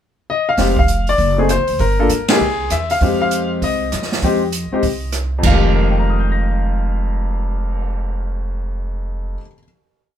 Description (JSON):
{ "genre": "jazz piano trio", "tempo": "197 BPM", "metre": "4/4", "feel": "swing 63% on 8ths", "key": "F minor", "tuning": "A4 = 440 Hz", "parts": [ { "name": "clear baby grand piano", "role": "melody", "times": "0.3-9.6 s", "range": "F2 to Bb6", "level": "-18 LUFS", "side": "left 3 dB", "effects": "none" }, { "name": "upright bass", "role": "bass", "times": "0.6-9.3 s", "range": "F1 to G2", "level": "-20 LUFS", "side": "equal", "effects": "none" }, { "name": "open jazz drum kit", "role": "drums", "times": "0.6-7.8 s", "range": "crash cymbal, cymbal swell, hi-hat, kick drum, ride cymbal, rim click, snare drum", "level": "-21 LUFS", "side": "right 2 dB", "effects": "none" } ], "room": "light reverb", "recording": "band playing live in one room", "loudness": "-15 LUFS", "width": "side -10 dB against mid", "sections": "0.0-0.6 pickup bar; 0.6-5.4 A section; 5.4-7.9 final chord", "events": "band accent 2.2", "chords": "0.0 N.C.; 0.6 Fm9; 1.2 F#(b5, no3); 1.8 Gm; 2.4 C; 3.0 Fm9" }